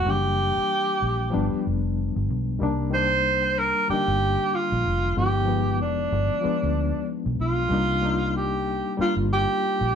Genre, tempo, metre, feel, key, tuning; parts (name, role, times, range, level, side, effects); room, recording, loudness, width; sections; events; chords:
lush 1970s-style soul; 94 BPM; 4/4; swing 58% on 16ths; C minor; A4 = 440 Hz
breathy tenor saxophone; melody; 0.0-9.9 s; D4 to C5; -24 LUFS; right 1 dB
barky reed electric piano; accompaniment; 0.0-9.9 s; D3 to F4; -28 LUFS; left 4 dB; overdrive, fast tremolo
vintage muted fingered electric bass; bass; 0.0-9.9 s; F1 to D2; -26 LUFS; equal
wet studio reverb, RT60 0.7 s; band playing live in one room; -21 LUFS; side -7 dB against mid
0.0-2.6 A section; 2.6-9.9 B section
tenor saxophone solo 0.0-2.6
0.1 F#7b9b13; 1.3 G7; 2.6 Cm7; 5.2 G7b9b13; 7.7 Cm7